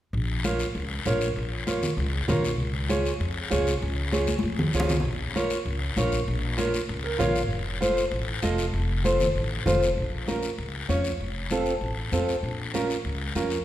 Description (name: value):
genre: latin, cumbia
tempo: 195 BPM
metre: 4/4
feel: straight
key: Bb minor, Bb harmonic minor from 10.0 s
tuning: A4 = 440 Hz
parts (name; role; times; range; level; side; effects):
- upright bass; bass; 0.1-13.6 s; F1 to F2; -29 LUFS; equal; none
- congas; percussion; 0.1-13.5 s; none; -32 LUFS; left 1 dB; none
- guiro; percussion; 0.1-13.6 s; none; -34 LUFS; left 5 dB; none
- nylon-string guitar; accompaniment; 0.4-13.6 s; C4 to F5; -27 LUFS; right 2 dB; none
room: wet recital hall reverb, RT60 1.3 s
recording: recorded in a church or concert hall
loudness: -24 LUFS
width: side -13 dB against mid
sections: 0.1-10.0 A section; 10.0-13.6 B section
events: drum fill 4.3-5.0; nylon-string guitar fill 6.9-7.5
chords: 0.1 Bbm; 2.6 Db; 5.0 Bbm; 7.5 F; 10.0 Bbm; 11.2 F; 12.4 Bbm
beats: | 0.13 0.44 0.75 1.05 | 1.36 1.67 1.98 2.29 | 2.59 2.90 3.21 3.51 | 3.82 4.13 4.44 4.74 | 5.05 5.36 5.67 5.97 | 6.28 6.59 6.89 7.20 | 7.51 7.82 8.12 8.43 | 8.74 9.04 9.35 9.66 | 9.97 10.28 10.58 10.89 | 11.20 11.51 11.82 12.12 | 12.43 12.74 13.05 13.36